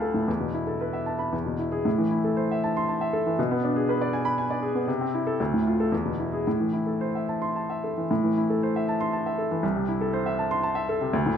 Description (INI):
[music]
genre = classical, virtuoso piano study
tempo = 117 BPM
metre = 3/4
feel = rubato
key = A minor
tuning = A4 = 440 Hz
[part]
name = clear baby grand piano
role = solo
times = 0.0-11.4 s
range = C2 to C6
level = -24 LUFS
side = equal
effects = none
[sound]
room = moderate recital hall reverb, RT60 1.7 s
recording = minimal, uncompressed stereo recording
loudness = -24 LUFS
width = side -8 dB against mid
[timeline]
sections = 0.0-8.1 A section; 8.1-11.4 A section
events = none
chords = 0.3 Esus4; 1.3 E; 1.9 Am; 3.4 G#dim/B; 4.9 Am/C; 5.4 Dm; 5.9 E; 6.5 Am; 9.6 Am/C